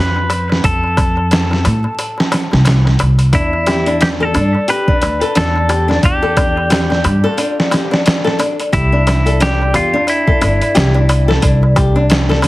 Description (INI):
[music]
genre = trip hop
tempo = 89 BPM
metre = 4/4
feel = swing 59% on 16ths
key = unclear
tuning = A4 = 440 Hz
[part]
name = clean electric guitar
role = melody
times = 0.0-12.5 s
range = E4 to B4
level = -19 LUFS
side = equal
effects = tape echo
[part]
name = upright bass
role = bass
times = 0.0-12.5 s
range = G1 to A2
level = -14 LUFS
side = equal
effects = none
[part]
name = darbuka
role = percussion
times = 0.2-12.5 s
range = none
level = -23 LUFS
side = left 1 dB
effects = none
[part]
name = trip hop sampler-style drum kit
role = drums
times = 0.3-12.5 s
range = hi-hat, kick drum, snare drum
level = -16 LUFS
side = equal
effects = none
[part]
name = flamenco guitar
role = arpeggios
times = 3.3-12.5 s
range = D4 to A4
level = -17 LUFS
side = left 2 dB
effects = tape echo
[sound]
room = light reverb, small room reverb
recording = heavily compressed radio sound, vinyl crackle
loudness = -11 LUFS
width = side -18 dB against mid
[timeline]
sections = 0.0-12.5 A section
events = none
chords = 0.0 F; 3.3 Em; 8.7 C